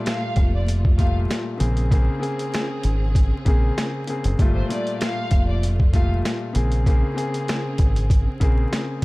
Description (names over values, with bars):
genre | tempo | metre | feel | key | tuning
hip hop, boom-bap hip-hop | 97 BPM | 4/4 | swing 54% on 16ths | unclear | A4 = 439 Hz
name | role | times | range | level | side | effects
rich studio violin section | melody | 0.0-6.1 s | C5 to F5 | -31 LUFS | left 1 dB | high-pass filter, low-pass filter, ping-pong delay
warm grand piano | accompaniment | 0.0-9.0 s | Bb2 to Ab4 | -27 LUFS | left 2 dB | high-pass filter, low-pass filter
warm studio string section | sustained chords | 0.0-9.0 s | Bb2 to Ab4 | -34 LUFS | right 2 dB | high-pass filter, low-pass filter
boom bap sampler-style drum kit | drums | 0.1-9.0 s | hi-hat, kick drum, snare drum | -20 LUFS | equal | none
deep dub fingered electric bass | bass | 0.4-8.6 s | F1 to Bb1 | -21 LUFS | equal | none
room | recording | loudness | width
little or no reverb | dark, warm production, vinyl crackle | -18 LUFS | side -22 dB against mid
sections
0.0-9.0 A section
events
none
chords
0.0 Gm9; 1.6 Bbm9; 4.4 Gm9; 6.6 Bbm9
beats
0.06 0.68 1.30 | 1.92 2.54 3.15 3.77 | 4.39 5.01 5.63 6.25 | 6.87 7.48 8.10 8.72